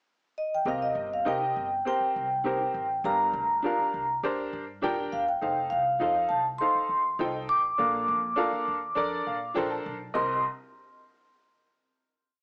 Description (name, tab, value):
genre	soul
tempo	101 BPM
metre	4/4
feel	straight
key	C dorian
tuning	A4 = 440 Hz
part	vibraphone with soft mallets	melody	0.4-10.4 s	Eb5 to D6	-29 LUFS	equal	plate reverb
part	clear upright piano	accompaniment	0.7-10.4 s	C2 to A5	-34 LUFS	equal	plate reverb
part	upright bass	bass	0.7-10.4 s	Eb1 to C3	-47 LUFS	equal	none
part	electric guitar through a small old amp	stabs	1.3-10.3 s	D4 to Eb5	-38 LUFS	equal	slapback echo
room	moderate club reverb, RT60 0.8 s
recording	small speaker sound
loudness	-28 LUFS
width	mono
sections	0.0-0.7 pickup bar; 0.7-10.1 verse; 10.1-12.4 final chord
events	upright piano fill 9.0-10.1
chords	0.0 N.C.; 0.7 Cm7; 3.0 Gm7; 5.4 F7; 7.8 Bbmaj7; 10.1 Cm7